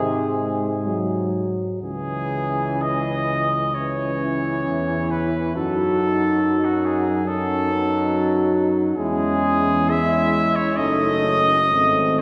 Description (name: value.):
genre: classical, hymn-like piece for brass band.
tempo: 56-72 BPM.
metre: 4/4.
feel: rubato.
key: C# minor.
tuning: A4 = 439 Hz.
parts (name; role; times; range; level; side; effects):
clear cornet; melody; 0.0-12.2 s; F#4 to E5; -25 LUFS; equal; none.
warm French horn section; second line; 0.0-12.2 s; B3 to F#4; -30 LUFS; equal; none.
clear trombone; accompaniment; 0.0-12.2 s; B#2 to A3; -29 LUFS; equal; none.
mellow euphonium; accompaniment; 0.0-12.2 s; F#3 to D#4; -28 LUFS; equal; none.
mellow tuba; bass; 0.0-12.2 s; F#1 to G#2; -28 LUFS; equal; none.
room: wet church reverb, RT60 2.5 s.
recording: none.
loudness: -21 LUFS.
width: mono.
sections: 0.0-12.2 A section.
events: none.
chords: 0.0 G#; 1.8 C#m; 5.6 D#dim/F#; 9.0 C#m/E; 10.8 D#m7b5/F#; 11.7 G#.